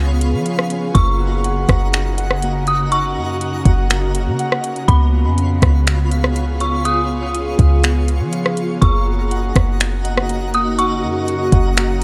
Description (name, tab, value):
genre	hip hop, atmospheric cloud-rap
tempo	122 BPM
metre	4/4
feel	half-time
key	F# major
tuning	A4 = 442 Hz
part	ethereal airy pad	sustained chords	0.0-12.0 s	C#3 to G#4	-26 LUFS	equal	ensemble chorus, built-in reverb, phaser, sidechain pumping
part	Celtic harp	arpeggios	0.0-12.0 s	A#3 to F#5	-28 LUFS	equal	delay
part	soft 808-style bass	bass	0.0-12.0 s	F#1 to E#3	-20 LUFS	equal	none
part	twinkling granular texture	texture	0.0-12.0 s	E#4 to C#6	-33 LUFS	equal	built-in reverb
part	smooth R&B drum kit	drums	0.2-12.0 s	finger snaps, hi-hat, kick drum, rim click	-19 LUFS	equal	vintage 12-bit sampler grit
part	dark detuned synth bell	melody	0.9-11.2 s	B5 to D#6	-24 LUFS	equal	chorus, delay
room	light reverb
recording	none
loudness	-17 LUFS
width	mono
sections	0.0-12.0 A section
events	none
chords	0.0 C#7; 0.9 F#6; 4.9 C#7; 8.8 F#6